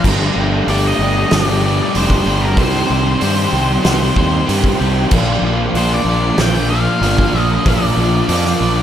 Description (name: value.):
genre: rock, shoegaze and dream pop.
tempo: 95 BPM.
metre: 4/4.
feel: straight.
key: unclear.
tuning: A4 = 440 Hz.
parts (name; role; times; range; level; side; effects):
crunchy overdriven guitar; riff; 0.0-8.8 s; Bb2 to G4; -16 LUFS; equal; wide subtle chorus.
fuzz fingered electric bass; bass; 0.0-8.8 s; F1 to G2; -17 LUFS; equal; overdrive.
loose indie drum kit; drums; 0.0-8.5 s; crash cymbal, hi-hat, kick drum, snare drum; -20 LUFS; equal; none.
octave-fuzz lead guitar; melody; 0.7-8.8 s; Bb4 to G5; -21 LUFS; left 1 dB; distortion, tape echo.
room: moderate huge ambient reverb, RT60 6.9 s.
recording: dreamy mix soaked in reverb.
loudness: -12 LUFS.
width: side -10 dB against mid.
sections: 0.0-8.8 A section.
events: none.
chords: 0.0 Gsus2; 2.6 Cm; 5.1 Bb.